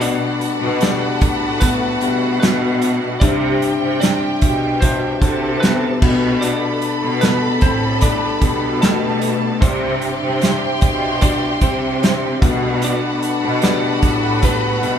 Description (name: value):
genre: pop ballad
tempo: 75 BPM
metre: 4/4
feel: straight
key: G major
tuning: A4 = 444 Hz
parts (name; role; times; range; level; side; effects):
- lightly driven lead guitar; melody; 0.0-15.0 s; A3 to D5; -21 LUFS; left 1 dB; none
- warm studio violin section; second line; 0.0-15.0 s; F#4 to B5; -24 LUFS; right 2 dB; none
- clear concert grand piano; accompaniment; 0.0-15.0 s; G2 to C5; -24 LUFS; left 5 dB; none
- warm studio string section; sustained chords; 0.0-15.0 s; G3 to C6; -26 LUFS; left 2 dB; none
- bright studio cello section; bass; 0.0-15.0 s; A2 to C3; -22 LUFS; equal; none
- loose indie drum kit; drums; 0.0-15.0 s; crash cymbal, hi-hat, kick drum, snare drum; -18 LUFS; right 1 dB; none
room: light reverb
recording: band playing live in one room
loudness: -15 LUFS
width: side -8 dB against mid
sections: 0.0-15.0 A section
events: none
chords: 0.0 Gadd9; 3.2 Cadd9; 6.0 Gadd9; 9.6 Cadd9; 12.4 Gadd9